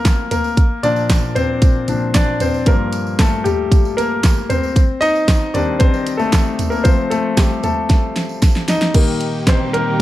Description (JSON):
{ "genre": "piano-driven pop", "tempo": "115 BPM", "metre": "4/4", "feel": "straight", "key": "unclear", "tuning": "A4 = 440 Hz", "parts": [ { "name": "clear concert grand piano", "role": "accompaniment", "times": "0.0-10.0 s", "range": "G2 to Eb5", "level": "-18 LUFS", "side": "left 2 dB", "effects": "none" }, { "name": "pop drum kit", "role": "drums", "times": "0.1-9.9 s", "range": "crash cymbal, handclaps, hi-hat, kick drum, snare drum, toms", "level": "-15 LUFS", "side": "right 1 dB", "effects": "none" }, { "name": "tambourine", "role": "percussion", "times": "0.1-8.8 s", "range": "none", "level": "-35 LUFS", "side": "right 7 dB", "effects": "none" }, { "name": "warm studio string section", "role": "sustained chords", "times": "8.9-10.0 s", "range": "Bb2 to G4", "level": "-23 LUFS", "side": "right 3 dB", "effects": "none" } ], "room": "light reverb", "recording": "dark, warm production", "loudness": "-14 LUFS", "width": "side -14 dB against mid", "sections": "0.0-8.9 A section; 8.9-10.0 B section", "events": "grand piano solo 0.0-8.9, 8.9-10.0; drum fill 7.9-8.9", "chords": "0.0 F; 0.6 Bbadd9; 2.7 Gm7; 4.8 Eb6; 6.9 F; 8.9 Eb", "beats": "0.05 | 0.57 1.10 1.62 2.14 | 2.67 3.19 3.71 4.24 | 4.76 5.28 5.81 6.33 | 6.86 7.38 7.90 8.43 | 8.95 9.47 10.00" }